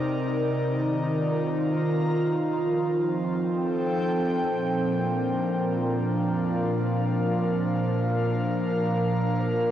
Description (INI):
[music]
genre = ambient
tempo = 64 BPM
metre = 4/4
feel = straight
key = Bb major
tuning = A4 = 440 Hz
[part]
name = airy breathy pad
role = solo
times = 0.0-9.7 s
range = Bb2 to Bb5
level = -23 LUFS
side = equal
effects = chorus, analog delay
[sound]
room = wet spring reverb, RT60 2.3 s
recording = home recording on cassette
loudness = -23 LUFS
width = side -11 dB against mid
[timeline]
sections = 0.0-4.5 A section; 4.5-9.7 B section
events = none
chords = 0.0 Cm7; 0.7 Ebsus2; 2.6 F7; 4.5 Bb